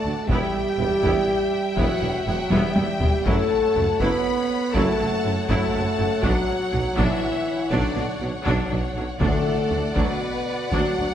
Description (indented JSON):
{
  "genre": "cinematic, epic orchestral film score",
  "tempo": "81 BPM (dotted quarters)",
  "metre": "12/8",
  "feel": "straight",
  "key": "unclear",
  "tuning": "A4 = 440 Hz",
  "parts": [
    { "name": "clear symphonic violin section", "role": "melody", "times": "0.0-11.1 s", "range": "A4 to B5", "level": "-33 LUFS", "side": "left 4 dB", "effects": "none" },
    { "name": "warm symphonic violin section", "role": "second line", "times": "0.0-11.1 s", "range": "C#5 to G5", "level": "-30 LUFS", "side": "left 1 dB", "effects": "none" },
    { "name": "dark French horn section", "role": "sustained chords", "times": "0.0-11.1 s", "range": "A3 to B4", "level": "-26 LUFS", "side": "left 2 dB", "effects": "none" },
    { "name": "dark trombone section", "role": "sustained chords", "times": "0.0-11.1 s", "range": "A2 to B3", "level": "-28 LUFS", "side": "right 4 dB", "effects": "none" },
    { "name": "rich symphonic double bass section", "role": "bass", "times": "0.0-11.1 s", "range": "E1 to D2", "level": "-30 LUFS", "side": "right 2 dB", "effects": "none" },
    { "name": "warm tuba", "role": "bass", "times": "0.0-11.1 s", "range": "E1 to D2", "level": "-31 LUFS", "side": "right 2 dB", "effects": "none" },
    { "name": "clear symphonic viola section", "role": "accompaniment", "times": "0.1-11.1 s", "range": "F#3 to F#4", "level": "-30 LUFS", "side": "equal", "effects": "none" },
    { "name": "rich symphonic cello section", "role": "bass", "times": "0.1-11.1 s", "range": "D2 to B2", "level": "-30 LUFS", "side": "right 2 dB", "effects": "none" },
    { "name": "taiko ensemble", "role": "drums", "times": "0.3-11.1 s", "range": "none", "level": "-26 LUFS", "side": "left 1 dB", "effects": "none" },
    { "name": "timpani", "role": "percussion", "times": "9.2-9.9 s", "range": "D3", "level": "-29 LUFS", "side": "left 2 dB", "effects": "none" }
  ],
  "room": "wet scoring stage reverb, RT60 1.5 s",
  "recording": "none",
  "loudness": "-20 LUFS",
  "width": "side -10 dB against mid",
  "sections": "0.0-11.1 A section",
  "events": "drum fill 2.5-3.3",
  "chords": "0.3 Em; 3.3 F#m7; 6.2 Bmadd9; 9.2 D"
}